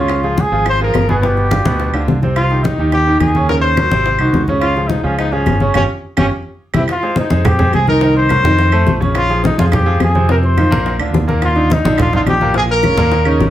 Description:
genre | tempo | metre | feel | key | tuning
latin, salsa | 212 BPM | 4/4 | straight | F minor | A4 = 440 Hz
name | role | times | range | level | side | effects
mellow trumpet | melody | 0.0-13.5 s | Db4 to C5 | -17 LUFS | left 1 dB | none
bright concert grand piano | accompaniment | 0.0-13.5 s | Bb2 to Eb5 | -18 LUFS | right 1 dB | none
fingered electric bass | bass | 0.0-13.5 s | G1 to F2 | -16 LUFS | equal | none
bongos | percussion | 0.1-13.5 s | none | -23 LUFS | left 4 dB | none
claves | percussion | 0.1-13.4 s | none | -27 LUFS | right 6 dB | none
congas | percussion | 0.1-13.5 s | none | -19 LUFS | left 1 dB | none
room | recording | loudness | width
wet studio reverb, RT60 0.5 s | heard from further back in the room | -12 LUFS | side -12 dB against mid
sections
0.0-6.9 A section; 6.9-13.5 A section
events
band accent 5.8-6.9; drum fill 6.3-6.9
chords
0.1 Db6; 1.2 G7; 2.4 Cm; 3.5 Ebm7; 4.1 Ab7; 4.6 Db; 6.3 C; 6.9 Fm7; 8.0 Cm7b5; 8.6 F7; 9.2 Bbm7; 10.3 F5; 10.8 Bb; 11.4 Ebmaj9; 12.6 Bbm

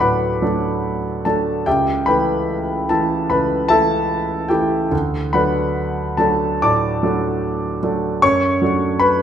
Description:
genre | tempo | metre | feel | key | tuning
classical, romantic character piece for solo piano | 67-77 BPM | 4/4 | rubato | D major | A4 = 440 Hz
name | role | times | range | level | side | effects
warm concert grand piano | solo | 0.0-9.2 s | C#2 to D6 | -16 LUFS | equal | none
room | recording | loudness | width
moderate recital hall reverb, RT60 1.3 s | none | -16 LUFS | side -9 dB against mid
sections
0.0-9.2 A section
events
none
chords
0.0 D; 1.7 A7/C#; 4.9 D; 8.2 D/F#

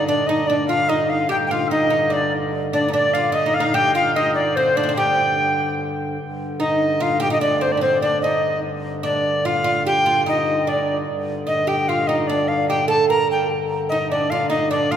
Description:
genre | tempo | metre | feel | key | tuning
medieval dance | 148 BPM | 3/4 | straight | unclear | A4 = 441 Hz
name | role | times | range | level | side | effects
alto recorder | melody | 0.0-15.0 s | C5 to Bb5 | -19 LUFS | equal | none
oud | second line | 0.0-15.0 s | C4 to Bb4 | -24 LUFS | right 2 dB | none
pedal harmonium | drone | 0.0-15.0 s | G2 to D3 | -27 LUFS | left 1 dB | none
clear shawm | second line | 1.3-5.8 s | C5 to G5 | -25 LUFS | left 3 dB | none
room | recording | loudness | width
wet church reverb, RT60 3.5 s | recorded in a church or concert hall | -17 LUFS | side -9 dB against mid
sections
0.0-6.2 A section; 6.2-15.0 B section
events
none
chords
none

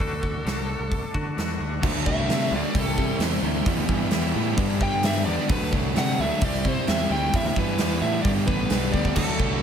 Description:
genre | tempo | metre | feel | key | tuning
quiet-loud alternative rock | 131 BPM | 4/4 | straight | unclear | A4 = 445 Hz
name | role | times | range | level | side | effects
smooth overdriven lead guitar | melody | 0.0-9.6 s | A4 to G5 | -29 LUFS | equal | slapback echo
twangy electric guitar | arpeggios | 0.0-1.8 s | D3 to F#4 | -34 LUFS | left 2 dB | tremolo, slapback echo
growling fingered electric bass | bass | 0.0-9.6 s | A1 to D3 | -28 LUFS | equal | overdrive
big rock drum kit | drums | 0.0-9.5 s | crash cymbal, hi-hat, kick drum, snare drum, splash cymbal | -26 LUFS | equal | none
tonewheel organ | sustained chords | 1.8-9.6 s | F#4 to C6 | -39 LUFS | equal | none
fuzz guitar | riff | 1.8-9.6 s | G2 to E4 | -28 LUFS | right 11 dB | distortion, slapback echo
thick fuzz guitar | riff | 1.8-9.6 s | G2 to F#4 | -29 LUFS | left 11 dB | distortion
room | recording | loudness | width
moderate scoring stage reverb, RT60 1.6 s, studio reverb | big arena sound | -21 LUFS | side -8 dB against mid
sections
0.0-1.8 A section; 1.8-9.6 B section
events
lead electric guitar solo 1.8-9.6; drum fill 8.9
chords
0.0 D; 2.8 C; 3.7 Em7; 4.6 G; 5.5 D; 6.4 C; 7.3 Em7; 8.3 G

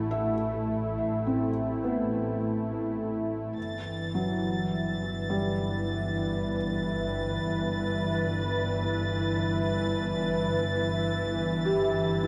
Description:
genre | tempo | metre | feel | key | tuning
ambient | 52 BPM | 3/4 | straight | G major | A4 = 440 Hz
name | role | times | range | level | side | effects
warm analog pad | sustained chords | 0.0-12.3 s | E3 to A5 | -32 LUFS | equal | chorus
felt-muted upright piano | arpeggios | 0.0-12.3 s | F#3 to F#5 | -35 LUFS | equal | dub echo
bright studio double bass section | bass | 0.0-12.3 s | G1 to A1 | -35 LUFS | equal | none
overtone-sweeping drone | drone | 0.1-12.3 s | E3 to D4 | -46 LUFS | equal | none
rich chamber violin section | texture | 3.6-12.3 s | A6 | -39 LUFS | equal | none
room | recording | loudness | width
wet plate reverb, RT60 3.2 s | echo-heavy mix | -29 LUFS | mono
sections
0.0-3.6 A section; 3.6-12.3 B section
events
none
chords
0.0 Am; 3.6 G6

